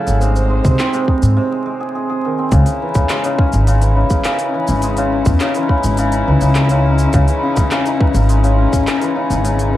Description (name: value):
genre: folktronica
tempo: 104 BPM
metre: 4/4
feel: straight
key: C# harmonic minor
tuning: A4 = 440 Hz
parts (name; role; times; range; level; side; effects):
- muted string quartet; sustained chords; 0.0-9.8 s; F#3 to B#4; -23 LUFS; equal; none
- cimbalom; arpeggios; 0.0-9.8 s; B#2 to G#4; -18 LUFS; left 1 dB; digital delay
- upright bass; bass; 0.1-9.8 s; G#1 to G#2; -14 LUFS; equal; none
- organic electronic drum kit; drums; 0.1-9.7 s; handclaps, hi-hat, shaker; -24 LUFS; equal; overdrive
- electronic kick drum; drums; 0.6-8.8 s; none; -15 LUFS; equal; overdrive
room: light reverb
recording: dark, warm production, vinyl crackle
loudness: -13 LUFS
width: side -14 dB against mid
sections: 0.0-2.5 A section; 2.5-9.8 B section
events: break 1.4-2.5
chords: 0.2 G#; 2.5 C#madd9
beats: | 0.22 0.79 1.37 1.95 | 2.52 3.10 3.68 4.25 | 4.83 5.41 5.99 6.56 | 7.14 7.72 8.29 8.87 | 9.45